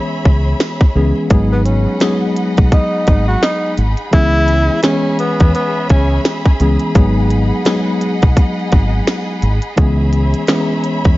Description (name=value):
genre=hip hop, boom-bap hip-hop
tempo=85 BPM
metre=4/4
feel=swing 58% on 16ths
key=C# minor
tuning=A4 = 437 Hz
part: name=mellow tine electric piano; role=accompaniment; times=0.0-11.2 s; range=E3 to G#4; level=-18 LUFS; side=left 1 dB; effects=medium stereo tremolo, cassette tape
part: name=warm studio string section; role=sustained chords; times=0.0-11.2 s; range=G#4 to B5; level=-24 LUFS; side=equal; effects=none
part: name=deep dub fingered electric bass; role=bass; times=0.3-11.2 s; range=G#1 to E2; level=-15 LUFS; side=equal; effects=none
part: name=minimal click drum kit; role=drums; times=0.3-11.2 s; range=hi-hat, kick drum, snare drum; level=-13 LUFS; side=equal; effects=overdrive
part: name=finger snap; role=percussion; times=0.6-10.7 s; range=none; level=-32 LUFS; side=right 5 dB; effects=none
part: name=breathy tenor saxophone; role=melody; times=1.5-6.2 s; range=B3 to F#4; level=-18 LUFS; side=equal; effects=none
room=light reverb, small room ambience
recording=vinyl crackle, nothing above 7.6 kHz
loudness=-12 LUFS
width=side -18 dB against mid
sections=0.0-11.2 A section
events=break 0.0-1.3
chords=0.0 C#m7; 1.3 G#m7; 4.1 C#m7; 7.0 G#m7; 9.8 C#m7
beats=0.60 | 1.31 2.01 2.72 3.42 | 4.13 4.84 5.54 6.25 | 6.96 7.66 8.37 9.07 | 9.78 10.48